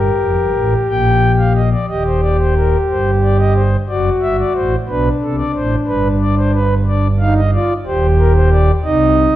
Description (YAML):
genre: classical, baroque-style 3-part fugue for pipe organ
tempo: 60 BPM (dotted quarters)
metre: 12/8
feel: straight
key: C minor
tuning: A4 = 440 Hz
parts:
  - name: pipe organ, principal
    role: solo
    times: 0.0-9.4 s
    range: Eb1 to G5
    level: -12 LUFS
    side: equal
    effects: none
room: wet recital hall reverb, RT60 1.4 s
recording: worn, warbling old tape, cassette tape, warbly pitch drift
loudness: -12 LUFS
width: side -13 dB against mid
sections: 0.0-1.9 A section; 1.9-9.4 B section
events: none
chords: 0.0 Gm; 1.9 Cm/Eb; 3.9 D7/F#; 5.9 G; 7.9 Cm/Eb